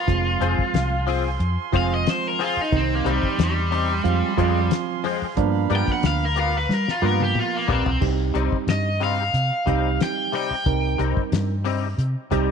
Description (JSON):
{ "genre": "straight-eighth soul blues", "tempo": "91 BPM", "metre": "4/4", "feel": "swing 53% on 16ths", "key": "C minor", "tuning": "A4 = 443 Hz", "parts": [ { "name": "cranked stack guitar", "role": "melody", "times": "0.0-11.0 s", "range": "G3 to G5", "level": "-25 LUFS", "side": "left 1 dB", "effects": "overdrive, slapback echo" }, { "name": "clear horn section", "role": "sustained chords", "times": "0.0-8.0 s", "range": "Eb5 to C6", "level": "-33 LUFS", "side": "right 10 dB", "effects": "none" }, { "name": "overdriven reed electric piano", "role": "accompaniment", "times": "0.1-12.5 s", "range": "Eb3 to Bb4", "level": "-26 LUFS", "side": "right 14 dB", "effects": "none" }, { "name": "vintage muted fingered electric bass", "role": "bass", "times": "0.1-12.5 s", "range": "F1 to G3", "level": "-23 LUFS", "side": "equal", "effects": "none" }, { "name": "cloth-damped thuddy drum kit", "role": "drums", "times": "0.1-12.5 s", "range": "crash cymbal, hi-hat, kick drum, snare drum, toms", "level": "-26 LUFS", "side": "left 4 dB", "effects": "none" }, { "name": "direct-recorded clean electric guitar", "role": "stabs", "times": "0.4-12.5 s", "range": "F2 to A#4", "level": "-28 LUFS", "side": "left 12 dB", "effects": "ensemble chorus" } ], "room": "light reverb", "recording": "1960s-style stereo with parts hard left and right", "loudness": "-20 LUFS", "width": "side -6 dB against mid", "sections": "0.0-8.0 A section; 8.0-12.5 B section", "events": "overdriven electric guitar solo 0.0-8.0; drum fill 6.7-8.0", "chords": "0.1 Fm; 2.7 Cm; 4.1 Fm; 5.4 G7#9; 8.0 Cm" }